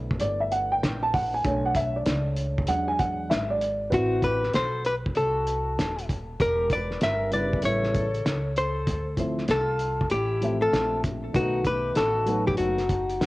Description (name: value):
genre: hip hop, jazz-hop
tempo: 97 BPM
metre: 4/4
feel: swing 64% on 16ths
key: unclear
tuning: A4 = 440 Hz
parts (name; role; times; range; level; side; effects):
- dark upright piano; accompaniment; 0.0-12.8 s; C#3 to A5; -27 LUFS; right 1 dB; cassette tape
- upright bass; bass; 0.0-13.3 s; D#1 to E2; -31 LUFS; equal; none
- cloth-damped thuddy drum kit; drums; 0.1-13.3 s; hi-hat, kick drum, snare drum; -29 LUFS; equal; cassette tape
- hollow-body jazz guitar; melody; 3.9-13.3 s; F#4 to E5; -26 LUFS; left 1 dB; cassette tape
- breathy mellow jazz flute; second line; 3.9-13.3 s; C4 to B4; -37 LUFS; left 1 dB; cassette tape
room: light reverb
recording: home recording on cassette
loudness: -23 LUFS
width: side -19 dB against mid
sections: 0.0-3.9 A section; 3.9-13.3 B section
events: upright piano solo 0.0-3.9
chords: 0.0 Cmaj13 (rootless); 1.5 Bm9; 2.7 E7; 3.9 Am69; 6.4 Em; 7.6 A7; 8.9 Dm9; 11.3 B7